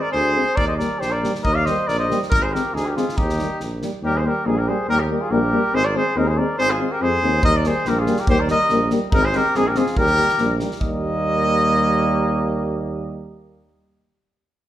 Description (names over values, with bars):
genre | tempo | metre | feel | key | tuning
balkan folk, Balkan brass band | 141 BPM | 2/4 | straight | Eb major | A4 = 439 Hz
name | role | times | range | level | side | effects
mellow trumpet | melody | 0.0-13.3 s | G4 to F5 | -21 LUFS | equal | none
clear flugelhorn | second line | 0.0-13.3 s | Bb3 to D5 | -27 LUFS | left 3 dB | none
warm tuba | bass | 0.1-13.3 s | Ab1 to F2 | -24 LUFS | right 1 dB | none
dark euphonium | accompaniment | 0.4-13.3 s | Bb3 to C4 | -26 LUFS | left 4 dB | none
warm euphonium | accompaniment | 0.4-13.3 s | G3 to Ab3 | -28 LUFS | right 6 dB | none
loose indie drum kit | percussion | 0.6-3.9, 7.4-11.0 s | kick drum, snare drum | -25 LUFS | equal | none
room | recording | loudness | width
moderate recital hall reverb, RT60 1.5 s | recorded in a church or concert hall | -17 LUFS | side -12 dB against mid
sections
0.0-4.0 A section; 4.0-10.8 A section; 10.8-12.5 B section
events
speeding up 0.0-12.5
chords
0.0 Ab; 0.6 Eb; 2.3 Ab; 3.2 Eb; 5.7 Ab; 7.4 Eb; 9.1 Ab; 10.0 Eb